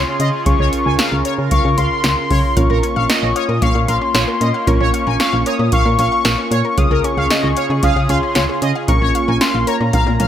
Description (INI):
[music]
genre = synth-pop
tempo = 114 BPM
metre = 4/4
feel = straight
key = Bb minor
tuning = A4 = 438 Hz
[part]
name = wide unison lead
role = melody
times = 0.0-10.3 s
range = Bb5 to Eb6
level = -20 LUFS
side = left 3 dB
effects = digital delay
[part]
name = analog synth brass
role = second line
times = 0.0-10.3 s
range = Bb4 to Ab5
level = -23 LUFS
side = equal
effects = chorus, digital delay
[part]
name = soft electric-piano-like synth keys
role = accompaniment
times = 0.0-10.3 s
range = Db4 to Db5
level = -26 LUFS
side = right 1 dB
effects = chorus
[part]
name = sweeping resonant pad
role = sustained chords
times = 0.0-10.3 s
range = Db3 to Bb4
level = -23 LUFS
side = right 2 dB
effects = chorus
[part]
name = solid FM bass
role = bass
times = 0.0-10.3 s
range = Bb1 to Db3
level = -19 LUFS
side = equal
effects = none
[part]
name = electro analog drum machine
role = drums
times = 0.2-10.3 s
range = hi-hat, kick drum, snare drum, toms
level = -18 LUFS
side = equal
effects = none
[part]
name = analog pluck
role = arpeggios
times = 2.6-10.3 s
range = Db4 to F5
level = -27 LUFS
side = left 2 dB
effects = chorus, digital delay
[sound]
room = moderate plate reverb, RT60 1.4 s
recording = bright 1980s-style digital production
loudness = -13 LUFS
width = side -10 dB against mid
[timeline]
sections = 0.0-10.3 A section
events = drum fill 9.9-10.3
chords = 0.0 Db; 2.6 Bbm; 6.8 Db; 8.9 Bbm